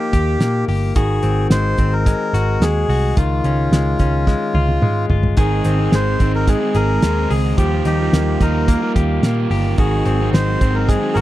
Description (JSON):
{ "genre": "jangly indie pop", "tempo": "109 BPM", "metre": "4/4", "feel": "straight", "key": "Ab major", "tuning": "A4 = 439 Hz", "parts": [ { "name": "melodica", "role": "melody", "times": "0.0-11.2 s", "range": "F4 to C5", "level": "-22 LUFS", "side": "right 1 dB", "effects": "slapback echo" }, { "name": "direct-recorded clean electric guitar", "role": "arpeggios", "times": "0.0-11.2 s", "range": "Eb3 to Ab4", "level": "-22 LUFS", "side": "left 6 dB", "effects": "slapback echo" }, { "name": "vintage muted picked electric bass", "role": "bass", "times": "0.1-11.2 s", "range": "G1 to Bb2", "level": "-18 LUFS", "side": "equal", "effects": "none" }, { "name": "cloth-damped thuddy drum kit", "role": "drums", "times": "0.1-11.2 s", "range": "hi-hat, kick drum, snare drum, toms", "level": "-17 LUFS", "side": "equal", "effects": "none" }, { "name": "crunchy overdriven guitar", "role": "accompaniment", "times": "5.4-11.2 s", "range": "Ab2 to F4", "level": "-23 LUFS", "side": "right 9 dB", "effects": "none" } ], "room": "light reverb", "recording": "dry, close 1970s-style studio recording", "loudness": "-14 LUFS", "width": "side -15 dB against mid", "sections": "0.0-11.2 A section", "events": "drum fill 4.3-5.4", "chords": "0.0 Ebadd9; 1.0 Ab7; 3.2 Dbadd9; 5.4 Ab; 7.6 Ebadd9; 9.8 Ab7" }